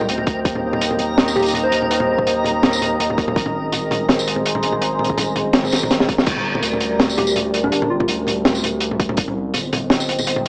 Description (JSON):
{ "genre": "half-time drum and bass", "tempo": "165 BPM", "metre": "4/4", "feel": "swing 54% on 16ths, half-time", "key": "G phrygian", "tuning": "A4 = 440 Hz", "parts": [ { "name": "dark analog pad", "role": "sustained chords", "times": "0.0-10.5 s", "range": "G3 to Bb5", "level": "-23 LUFS", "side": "equal", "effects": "chorus, sidechain pumping" }, { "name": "saturated sub bass", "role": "bass", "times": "0.0-10.5 s", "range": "G1 to Eb2", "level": "-25 LUFS", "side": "equal", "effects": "none" }, { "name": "crunchy breakbeat drum kit", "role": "drums", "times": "0.0-10.5 s", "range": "crash cymbal, hi-hat, snare drum, tambourine, toms", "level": "-19 LUFS", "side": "equal", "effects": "none" }, { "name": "backwards swelling texture", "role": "texture", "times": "0.0-6.3 s", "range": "Bb4", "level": "-26 LUFS", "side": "equal", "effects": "built-in reverb" }, { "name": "electronic kick drum", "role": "drums", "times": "0.3-9.3 s", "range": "none", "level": "-20 LUFS", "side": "equal", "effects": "none" }, { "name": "soft struck synth lead", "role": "melody", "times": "1.4-2.4, 7.2-8.1 s", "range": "D4 to C5", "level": "-22 LUFS", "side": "equal", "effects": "chorus, tape echo" } ], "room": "light reverb, small room reverb", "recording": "dry, gritty hardware recording, small speaker sound", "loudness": "-16 LUFS", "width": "side -34 dB against mid", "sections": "0.0-6.3 A section; 6.3-10.5 A section", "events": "drop 0.0-6.3, 6.3-10.5; drum fill 5.7-6.3", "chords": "0.5 Eb; 3.4 Ab; 6.3 Gm; 9.2 Cm", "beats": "0.09 | 0.45 0.81 1.18 1.54 | 1.91 2.27 2.63 3.00 | 3.36 3.72 4.09 4.45 | 4.81 5.18 5.54 5.91 | 6.27 6.63 7.00 7.36 | 7.72 8.09 8.45 8.81 | 9.18 9.54 9.90 10.27" }